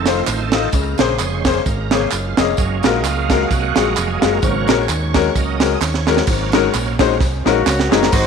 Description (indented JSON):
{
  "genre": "uptempo gospel",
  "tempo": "130 BPM",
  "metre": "4/4",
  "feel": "swing 56% on 8ths",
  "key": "unclear",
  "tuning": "A4 = 441 Hz",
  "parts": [
    { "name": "bright tonewheel organ", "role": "sustained chords", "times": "0.0-8.3 s", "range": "Db3 to Eb5", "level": "-24 LUFS", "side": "right 9 dB", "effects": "slow rotary speaker, chorus vibrato" },
    { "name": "warm French horn section", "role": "sustained chords", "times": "0.0-8.1 s", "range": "Db3 to F5", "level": "-31 LUFS", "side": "right 11 dB", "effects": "none" },
    { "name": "fingered electric bass", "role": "bass", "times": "0.0-8.3 s", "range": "F1 to Eb2", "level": "-22 LUFS", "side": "equal", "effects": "none" },
    { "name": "bright upright piano", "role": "accompaniment", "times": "0.1-8.3 s", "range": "Ab2 to Eb5", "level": "-19 LUFS", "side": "left 13 dB", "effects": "none" },
    { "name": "tight funk drum kit", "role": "drums", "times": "0.1-8.2 s", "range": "crash cymbal, hi-hat, kick drum, ride cymbal, snare drum", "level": "-19 LUFS", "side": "right 4 dB", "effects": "none" },
    { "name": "tambourine and handclaps", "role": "percussion", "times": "0.1-8.2 s", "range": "none", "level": "-28 LUFS", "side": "right 4 dB", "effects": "none" },
    { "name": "warm horn section", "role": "melody", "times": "7.5-8.3 s", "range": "Bb3 to C5", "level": "-19 LUFS", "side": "left 1 dB", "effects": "none" }
  ],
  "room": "light reverb, small room reverb",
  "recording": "1960s-style stereo with parts hard left and right",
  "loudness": "-14 LUFS",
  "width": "side -6 dB against mid",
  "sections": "0.0-6.3 A section; 6.3-8.1 B section",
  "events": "tonewheel organ solo 0.0-6.3; drum fill 5.8-6.3, 7.2-8.1",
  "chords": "0.0 F7; 0.7 Bbm9; 4.4 Ab9sus4",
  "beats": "0.27 | 0.73 1.19 1.66 2.12 | 2.58 3.04 3.50 3.97 | 4.43 4.89 5.35 5.82 | 6.28 6.74 7.20 7.66 | 8.12"
}